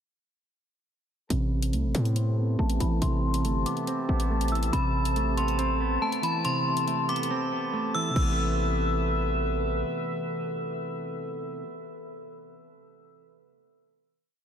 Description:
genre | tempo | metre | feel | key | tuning
hip hop, drill | 140 BPM | 4/4 | half-time | A minor | A4 = 440 Hz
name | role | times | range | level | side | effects
metallic FM bell | melody | 1.3-9.4 s | A5 to E6 | -31 LUFS | left 2 dB | chorus, low-pass filter, ping-pong delay
semi-hollow electric guitar | accompaniment | 1.3-11.7 s | C3 to C4 | -31 LUFS | right 3 dB | low-pass filter
warm brass ensemble | sustained chords | 1.3-11.7 s | C3 to A5 | -34 LUFS | left 2 dB | stereo widening, low-pass filter
hard-hitting 808-style bass | bass | 1.3-9.8 s | G1 to A2 | -27 LUFS | equal | none
drill drum kit | drums | 1.3-8.3 s | crash cymbal, hi-hat, kick drum | -36 LUFS | left 1 dB | none
room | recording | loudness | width
moderate cathedral reverb, RT60 6.0 s | dreamy mix soaked in reverb | -25 LUFS | side -8 dB against mid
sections
1.3-8.2 breakdown; 8.2-11.6 final chord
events
filter sweep 1.3-8.2; drums muted 7.3-8.2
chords
1.3 Amadd9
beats
| 1.30 1.73 2.16 2.59 | 3.02 3.45 3.88 4.30 | 4.73 5.16 5.59 6.02 | 6.45 6.88 7.30 7.73 | 8.16 8.59 9.02 9.45 | 9.88 10.30 10.73 11.16

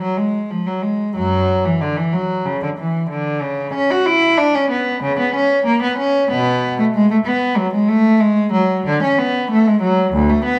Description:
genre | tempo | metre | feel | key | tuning
classical, baroque-style suite movement for unaccompanied cello | 93 BPM | 4/4 | rubato | F# minor | A4 = 443 Hz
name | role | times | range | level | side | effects
warm cello | solo | 0.0-10.6 s | D2 to F#4 | -17 LUFS | equal | none
room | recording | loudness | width
wet recital hall reverb, RT60 1.3 s | none | -17 LUFS | mono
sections
0.0-10.6 A section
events
none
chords
none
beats
0.50 | 1.15 1.81 2.45 3.10 | 3.74 4.38 5.03 5.66 | 6.30 6.94 7.57 8.20 | 8.85 9.50 10.13

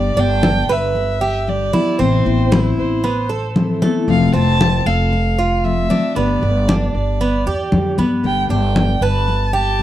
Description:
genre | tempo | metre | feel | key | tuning
latin, Cuban son and guajira | 115 BPM | 4/4 | straight | unclear | A4 = 439 Hz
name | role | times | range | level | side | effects
warm violin | melody | 0.0-9.8 s | C5 to A5 | -22 LUFS | right 1 dB | none
picked steel-string acoustic guitar | accompaniment | 0.0-9.8 s | C3 to G4 | -20 LUFS | left 6 dB | none
upright bass | bass | 0.0-9.8 s | F1 to G2 | -19 LUFS | equal | none
Cuban tres | arpeggios | 0.2-9.8 s | A3 to B4 | -21 LUFS | right 4 dB | none
congas | percussion | 0.2-9.8 s | none | -19 LUFS | left 1 dB | none
room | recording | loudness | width
light reverb | dry, close 1970s-style studio recording | -14 LUFS | side -12 dB against mid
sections
0.0-9.8 A section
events
none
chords
0.0 G; 2.0 Amadd9; 4.1 F; 6.2 Gadd9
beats
0.43 0.95 1.47 | 1.99 2.52 3.04 3.56 | 4.08 4.60 5.12 5.64 | 6.16 6.68 7.20 7.72 | 8.24 8.76 9.28 9.79

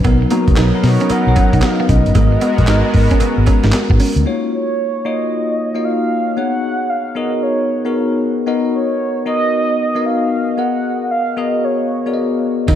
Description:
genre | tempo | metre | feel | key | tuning
R&B, new jack swing | 114 BPM | 4/4 | swing 65% on 16ths | unclear | A4 = 439 Hz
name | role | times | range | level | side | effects
bell-like tine electric piano | accompaniment | 0.0-12.8 s | F#3 to F5 | -18 LUFS | left 3 dB | phaser
clean electric guitar | riff | 0.0-4.1, 12.7-12.8 s | Ab3 to D#4 | -22 LUFS | right 5 dB | analog chorus
vintage muted fingered electric bass | bass | 0.0-4.2, 12.7-12.8 s | G1 to B2 | -15 LUFS | equal | none
breakbeat sampler-style drum kit | drums | 0.0-4.3, 12.7-12.8 s | handclaps, hi-hat, kick drum, snare drum, tambourine | -16 LUFS | equal | none
cowbell | percussion | 0.0-3.9, 12.7-12.8 s | none | -30 LUFS | right 6 dB | none
lush unison pad | sustained chords | 0.1-4.2, 12.7-12.8 s | Ab3 to A#4 | -24 LUFS | right 1 dB | chorus
mellow horn-like synth lead | melody | 0.8-12.4 s | Db5 to F#5 | -20 LUFS | right 2 dB | chorus, diffuse ambient delay
room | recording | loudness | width
moderate lush hall reverb, RT60 1.9 s, digital ambience | dreamy mix soaked in reverb | -13 LUFS | side -10 dB against mid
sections
0.0-4.3 A section; 4.3-12.8 B section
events
none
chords
0.0 Bmaj7; 2.2 Abm9; 4.3 Ebm9; 6.4 Db9sus4; 8.5 Bmaj7; 10.6 Abm9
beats
| 0.05 0.57 1.10 1.63 | 2.15 2.68 3.21 3.73 | 4.26 4.79 5.31 5.84 | 6.37 6.89 7.42 7.94 | 8.47 9.00 9.52 10.05 | 10.57 11.10 11.63 12.15 | 12.68

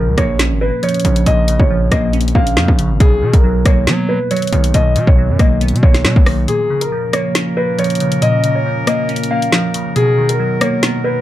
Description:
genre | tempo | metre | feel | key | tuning
hip hop, drill | 138 BPM | 4/4 | half-time | Bb phrygian | A4 = 440 Hz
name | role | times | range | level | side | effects
dark concert grand piano | melody | 0.0-11.2 s | Ab4 to F5 | -19 LUFS | equal | low-pass filter
glassy digital keys | accompaniment | 0.0-11.2 s | Bb2 to Db4 | -18 LUFS | equal | chorus, low-pass filter
distorted 808-style bass | bass | 0.0-6.5 s | Ab1 to F#3 | -15 LUFS | equal | distortion
drill drum kit | drums | 0.2-10.9 s | hi-hat, kick drum, rim click, snare drum | -15 LUFS | equal | none
warm brass ensemble | sustained chords | 6.5-11.2 s | B2 to Bb4 | -23 LUFS | equal | none
room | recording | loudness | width
little or no reverb | dark, warm production | -12 LUFS | side -13 dB against mid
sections
0.0-11.2 A section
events
break 6.5-11.2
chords
0.0 Bbm; 3.0 Bmaj7; 6.5 Bbm; 10.0 Bmaj7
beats
0.40 0.83 | 1.26 1.70 2.13 2.57 | 3.00 3.44 3.87 4.31 | 4.74 5.18 5.61 6.05 | 6.48 6.92 7.35 7.79 | 8.22 8.66 9.09 9.53 | 9.96 10.39 10.83

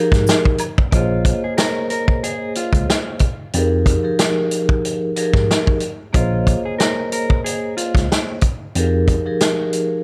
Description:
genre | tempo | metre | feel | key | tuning
hip hop, boom-bap hip-hop | 92 BPM | 4/4 | swing 54% on 16ths | Bb minor | A4 = 438 Hz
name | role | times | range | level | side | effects
vibraphone with soft mallets | accompaniment | 0.0-10.0 s | F3 to Eb5 | -23 LUFS | equal | high-pass filter, low-pass filter
tine electric piano | bass | 0.1-9.2 s | Bb1 to Ab2 | -22 LUFS | equal | none
vintage drum kit | drums | 0.1-9.9 s | hi-hat, kick drum, snare drum | -20 LUFS | equal | none
tube shaker and woodblock | percussion | 0.3-0.8 s | none | -33 LUFS | equal | none
mellow electric guitar | melody | 1.0-8.1 s | F4 to Bb4 | -28 LUFS | equal | high-pass filter, low-pass filter, tape echo
room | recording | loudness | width
light reverb, small room ambience | none | -18 LUFS | mono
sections
0.9-10.0 A section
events
none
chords
0.0 Fm11; 0.9 Bbm11; 3.5 Fm11; 6.1 Bbm11; 8.8 Fm11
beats
0.27 | 0.93 1.58 2.23 2.88 | 3.54 4.19 4.84 5.49 | 6.14 6.80 7.45 8.10 | 8.75 9.40

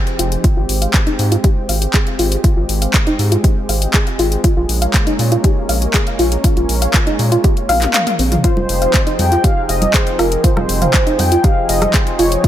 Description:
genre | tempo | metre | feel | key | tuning
progressive house | 120 BPM | 4/4 | straight | F minor | A4 = 439 Hz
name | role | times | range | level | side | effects
lush unison pad | sustained chords | 0.0-12.5 s | F3 to Ab4 | -23 LUFS | equal | chorus, sidechain pumping
house drum kit | drums | 0.1-12.5 s | handclaps, hi-hat, toms | -20 LUFS | left 2 dB | overdrive
soft round pluck | arpeggios | 0.2-12.5 s | F3 to F5 | -20 LUFS | equal | lush chorus, sidechain pumping, dub echo
round analog bass | bass | 0.2-12.4 s | F1 to Bb2 | -17 LUFS | equal | sidechain pumping
electronic kick drum | drums | 0.4-12.5 s | none | -14 LUFS | equal | overdrive
warm velvety synth lead | melody | 8.4-12.5 s | Bb4 to G5 | -18 LUFS | left 1 dB | chorus, dub echo
deep house drum kit | percussion | 8.6-11.9 s | congas, rim click, toms | -22 LUFS | right 1 dB | sidechain pumping on perc, sidechain pumping on snare, sidechain pumping on toms
room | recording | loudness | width
light reverb, digital ambience | none | -12 LUFS | side -12 dB against mid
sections
0.0-12.5 A section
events
filter sweep on analog synth pad 0.0-12.5; drum fill 7.7-8.4; kick drops out 7.9-8.4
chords
0.4 Abmaj7; 4.4 Bbm7; 8.4 Fm7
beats
| 0.44 0.94 1.44 1.94 | 2.44 2.94 3.44 3.94 | 4.44 4.94 5.44 5.94 | 6.44 6.94 7.44 7.94 | 8.44 8.94 9.44 9.94 | 10.44 10.94 11.44 11.94 | 12.44

